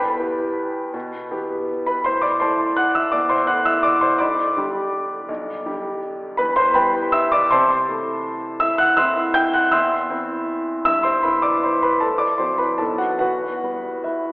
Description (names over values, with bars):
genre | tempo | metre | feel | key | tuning
classical, piano waltz | 139-174 BPM | 3/4 | rubato | G major, E minor from 6.4 s | A4 = 440 Hz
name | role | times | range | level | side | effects
clear grand piano | solo | 0.0-14.3 s | B1 to G6 | -18 LUFS | equal | none
room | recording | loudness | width
wet concert hall reverb, RT60 1.9 s | heard from further back in the room, telephone sound | -17 LUFS | side -23 dB against mid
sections
0.0-14.3 A section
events
none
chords
0.0 Em; 2.1 Am; 4.2 G/B; 6.4 Em; 7.5 Am/C; 8.6 Am; 10.9 Em/G; 12.0 F#m7b5/A; 12.8 B7; 13.2 Em